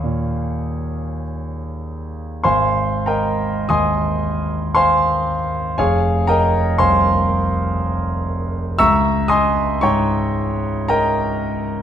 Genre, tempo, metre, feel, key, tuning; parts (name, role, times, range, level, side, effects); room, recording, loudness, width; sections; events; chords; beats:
classical, impressionist solo piano; 44-62 BPM; 3/4; rubato; Ab major; A4 = 439 Hz
clear concert grand piano; solo; 0.0-11.8 s; F1 to Fb6; -16 LUFS; equal
moderate recital hall reverb, RT60 1.5 s; dark, warm production; -16 LUFS; side -9 dB against mid
0.0-11.8 A section
0.0 Eb9sus4; 2.4 Ab69; 5.8 Fm7; 8.8 Dbm6
0.03 1.25 | 2.43 3.70 4.76 | 5.78 6.79 7.81 | 8.79 9.83 10.90